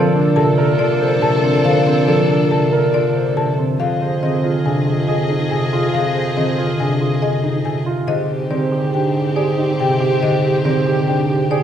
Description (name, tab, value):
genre	classical, minimalist pattern music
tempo	140 BPM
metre	5/4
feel	straight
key	F dorian from 3.8 s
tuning	A4 = 440 Hz
part	marimba with hard mallets	melody	0.0-11.6 s	D5 to A5	-25 LUFS	left 5 dB	none
part	bright wooden-headed alto flute	second line	0.0-11.6 s	G4 to A4	-25 LUFS	right 1 dB	none
part	concert harp	accompaniment	0.0-11.6 s	C3 to F3	-19 LUFS	equal	none
part	rich studio violin section	sustained chords	0.0-11.6 s	C4 to Eb5	-25 LUFS	left 3 dB	none
part	warm grand piano	arpeggios	0.0-11.6 s	C4 to C5	-22 LUFS	right 3 dB	none
part	mellow bassoon	bass	0.0-11.6 s	F2 to Bb2	-21 LUFS	equal	none
room	wet scoring stage reverb, RT60 2.1 s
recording	heard from further back in the room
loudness	-14 LUFS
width	side -9 dB against mid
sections	0.0-3.8 A section; 3.8-11.6 B section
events	none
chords	0.0 Bbmaj7; 3.8 Fm7; 8.1 Abmaj7